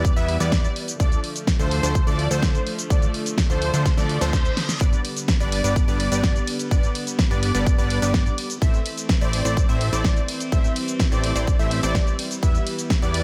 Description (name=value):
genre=EDM, festival progressive house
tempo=126 BPM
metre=4/4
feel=straight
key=A minor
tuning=A4 = 437 Hz
part: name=dark studio string section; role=sustained chords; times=0.0-13.2 s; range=D3 to C4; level=-33 LUFS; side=equal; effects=sidechain pumping
part: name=unison lead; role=arpeggios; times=0.0-13.2 s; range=C5 to E5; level=-32 LUFS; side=equal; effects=ensemble chorus, sidechain pumping, tape echo
part: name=supersaw stab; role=riff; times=0.0-13.2 s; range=F3 to E5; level=-32 LUFS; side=equal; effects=sidechain pumping, tape echo
part: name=fat analog bass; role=bass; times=0.0-13.2 s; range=G1 to E2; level=-28 LUFS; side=equal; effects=sidechain pumping
part: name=big-room dance drum kit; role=drums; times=0.0-13.2 s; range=cabasa, hi-hat, ride cymbal, snare drum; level=-30 LUFS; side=equal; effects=none
part: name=electronic kick drum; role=drums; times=0.0-13.0 s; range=none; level=-23 LUFS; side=equal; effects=none
part: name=reverse cymbal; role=sound effects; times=4.1-4.8 s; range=none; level=-35 LUFS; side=equal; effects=none
room=little or no reverb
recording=none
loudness=-22 LUFS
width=mono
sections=0.0-13.2 A section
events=drum fill 3.9-4.8; reverse cymbal 4.1-4.8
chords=0.0 Em; 1.0 Dm; 4.8 G; 8.6 Am; 12.4 Em